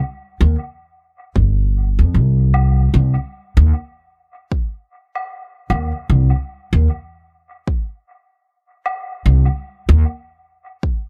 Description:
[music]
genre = ambient dub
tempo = 76 BPM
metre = 4/4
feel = swing 60% on 16ths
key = C minor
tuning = A4 = 441 Hz
[part]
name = upright bass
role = bass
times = 0.4-10.0 s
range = G1 to F2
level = -15 LUFS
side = equal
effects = none
[part]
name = electronic kick drum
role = drums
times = 1.4-11.0 s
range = none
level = -22 LUFS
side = equal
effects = none
[part]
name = woodblock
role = drums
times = 2.5-9.0 s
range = none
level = -31 LUFS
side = equal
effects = dub echo
[sound]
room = little or no reverb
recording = echo-heavy mix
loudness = -18 LUFS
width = mono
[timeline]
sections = 0.0-11.1 A section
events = none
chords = none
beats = 0.57 1.36 2.15 | 2.94 3.73 4.52 5.31 | 6.10 6.89 7.67 8.46 | 9.25 10.04 10.83

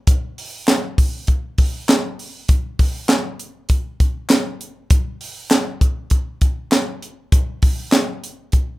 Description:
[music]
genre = funk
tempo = 99 BPM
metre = 4/4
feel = swing 56% on 16ths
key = none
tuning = none
[part]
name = crisp fusion drum kit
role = drums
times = 0.1-8.7 s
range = handclaps, hi-hat, kick drum, snare drum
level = -16 LUFS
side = equal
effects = none
[part]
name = group handclap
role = percussion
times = 0.7-8.1 s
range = none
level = -27 LUFS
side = left 4 dB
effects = none
[sound]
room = light reverb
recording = rough home demo mix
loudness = -17 LUFS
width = side -19 dB against mid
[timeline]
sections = 0.0-8.8 A section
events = none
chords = none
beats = | 0.07 0.68 1.28 1.89 | 2.49 3.10 3.70 4.30 | 4.91 5.51 6.12 6.72 | 7.33 7.93 8.54

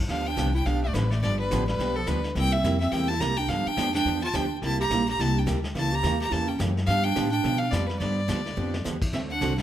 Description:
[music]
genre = country, western swing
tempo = 213 BPM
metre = 4/4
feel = swing 60% on 8ths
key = G mixolydian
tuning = A4 = 441 Hz
[part]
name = upright bass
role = bass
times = 0.0-9.6 s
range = G1 to B2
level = -28 LUFS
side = left 1 dB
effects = none
[part]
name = clear fiddle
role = melody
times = 0.1-9.6 s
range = A4 to Bb5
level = -29 LUFS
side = equal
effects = none
[part]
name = mellow clarinet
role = second line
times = 0.1-9.6 s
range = F3 to G4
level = -31 LUFS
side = right 3 dB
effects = none
[part]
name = picked steel-string acoustic guitar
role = accompaniment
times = 0.1-9.5 s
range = C3 to A4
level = -31 LUFS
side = right 3 dB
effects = none
[part]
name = vintage brush drum kit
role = drums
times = 0.1-9.6 s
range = brushed snare drum, crash cymbal, hi-hat, kick drum, snare drum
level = -34 LUFS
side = left 1 dB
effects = none
[sound]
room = light reverb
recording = none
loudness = -23 LUFS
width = side -11 dB against mid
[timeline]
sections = 0.1-9.6 A section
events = drum fill 8.6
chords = 0.1 G7; 2.4 C7; 3.5 G7; 4.6 C7; 5.8 C#dim7; 6.9 G7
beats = | 0.10 0.38 0.66 0.95 | 1.23 1.51 1.80 2.08 | 2.36 2.64 2.93 3.21 | 3.49 3.77 4.06 4.34 | 4.62 4.90 5.19 5.47 | 5.75 6.03 6.31 6.60 | 6.88 7.16 7.44 7.72 | 8.01 8.29 8.57 8.85 | 9.13 9.41

